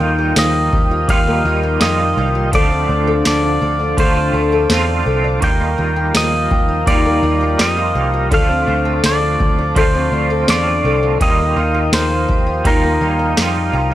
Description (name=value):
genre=dream pop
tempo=83 BPM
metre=4/4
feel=straight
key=unclear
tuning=A4 = 440 Hz
part: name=pedal steel guitar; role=melody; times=0.0-13.9 s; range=Bb4 to G5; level=-19 LUFS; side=equal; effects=tape echo
part: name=clean electric guitar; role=accompaniment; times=0.0-13.9 s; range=D3 to F4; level=-23 LUFS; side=right 5 dB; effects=tremolo, ensemble chorus
part: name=mellow tonewheel organ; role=sustained chords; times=0.0-13.9 s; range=Bb4 to Eb6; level=-23 LUFS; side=equal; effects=slow rotary speaker
part: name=picked twelve-string acoustic guitar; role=arpeggios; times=0.0-13.9 s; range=D3 to A4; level=-20 LUFS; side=left 3 dB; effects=analog chorus, tape echo
part: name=vintage muted picked electric bass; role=bass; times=0.0-13.9 s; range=C2 to F2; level=-19 LUFS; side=equal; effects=tube saturation
part: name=booming analog drum machine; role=drums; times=0.4-13.5 s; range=kick drum, ride cymbal, snare drum, tambourine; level=-18 LUFS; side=equal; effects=none
room=little or no reverb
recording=dry, gritty hardware recording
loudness=-13 LUFS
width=side -13 dB against mid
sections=0.0-13.9 A section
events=none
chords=0.0 Ebadd9; 2.5 Dm7; 5.4 Ebadd9; 8.3 Dm7; 11.2 Ebadd9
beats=0.36 1.09 1.81 | 2.53 3.26 3.98 4.70 | 5.43 6.15 6.87 7.59 | 8.32 9.04 9.76 10.49 | 11.21 11.93 12.65 13.38